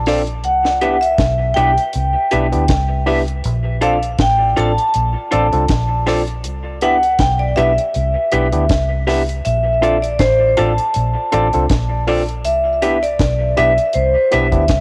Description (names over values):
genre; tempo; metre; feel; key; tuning
lovers rock reggae; 80 BPM; 4/4; swing 55% on 16ths; unclear; A4 = 443 Hz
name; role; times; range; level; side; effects
vibraphone with medium hard mallets; melody; 0.0-14.8 s; C5 to A5; -19 LUFS; equal; cassette tape, tape echo
vintage muted fingered electric bass; bass; 0.0-14.8 s; A1 to D2; -22 LUFS; equal; none
barky tine electric piano; accompaniment; 0.1-14.6 s; B3 to A4; -23 LUFS; equal; overdrive, cassette tape
electric guitar through a small old amp; stabs; 0.1-14.5 s; F4 to E5; -25 LUFS; equal; spring reverb, cassette tape, analog delay
deep reggae drum kit; drums; 0.1-14.8 s; hi-hat, kick drum, snare drum; -22 LUFS; equal; cassette tape
room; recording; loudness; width
small room ambience; home recording on cassette; -16 LUFS; mono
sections
0.0-14.8 A section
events
none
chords
0.4 Cmaj7; 3.4 Bbmaj7; 6.4 Cmaj7; 9.4 Bbmaj7; 12.4 Cmaj7